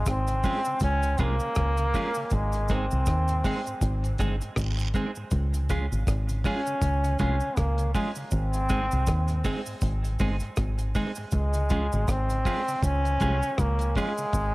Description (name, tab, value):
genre	roots reggae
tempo	80 BPM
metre	4/4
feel	swing 58% on 16ths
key	unclear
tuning	A4 = 440 Hz
part	bright trombone	melody	0.0-14.5 s	Ab3 to Db4	-30 LUFS	equal	cassette tape, dub echo
part	deep dub fingered electric bass	bass	0.0-14.5 s	G1 to Eb2	-26 LUFS	equal	none
part	deep reggae drum kit	drums	0.1-14.5 s	hi-hat, kick drum, rim click	-30 LUFS	equal	none
part	cabasa and guiro	percussion	0.1-14.5 s	none	-43 LUFS	right 4 dB	none
part	mellow tonewheel organ	accompaniment	0.3-14.3 s	Ab2 to Db4	-37 LUFS	left 1 dB	slow rotary speaker, cassette tape
part	clean electric guitar	accompaniment	0.4-14.2 s	Ab3 to Ab4	-34 LUFS	right 3 dB	cassette tape, dub echo
room	studio reverb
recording	home recording on cassette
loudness	-24 LUFS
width	side -21 dB against mid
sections	0.0-14.5 A section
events	none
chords	0.0 Db; 2.3 Ab; 5.3 Db; 8.3 Ab; 11.3 Db